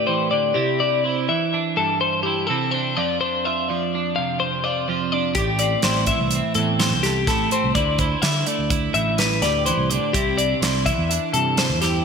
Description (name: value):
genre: math rock and midwest emo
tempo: 125 BPM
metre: 5/4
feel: straight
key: unclear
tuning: A4 = 440 Hz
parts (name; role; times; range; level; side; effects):
- twelve-string electric guitar; accompaniment; 0.0-12.0 s; E2 to A4; -24 LUFS; right 10 dB; lush chorus
- twelve-string electric guitar; arpeggios; 0.0-12.0 s; G4 to F5; -21 LUFS; left 6 dB; digital delay
- fingered electric bass; bass; 5.3-12.0 s; A1 to D3; -24 LUFS; equal; none
- modern studio drum kit; drums; 5.3-11.9 s; hi-hat, kick drum, snare drum; -24 LUFS; right 1 dB; gated reverb
room: wet lush hall reverb, RT60 1.9 s, studio reverb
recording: bright 1980s-style digital production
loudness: -18 LUFS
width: side -6 dB against mid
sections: 0.0-12.0 A section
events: none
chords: 0.0 Dsus2; 0.6 Cadd9; 3.0 F5; 5.4 Am7; 7.8 Dsus2; 10.1 Cadd9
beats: 0.08 | 0.56 1.04 1.52 2.00 2.48 | 2.96 3.44 3.92 4.40 4.88 | 5.36 5.84 6.32 6.79 7.27 | 7.75 8.23 8.71 9.19 9.66 | 10.14 10.62 11.10 11.57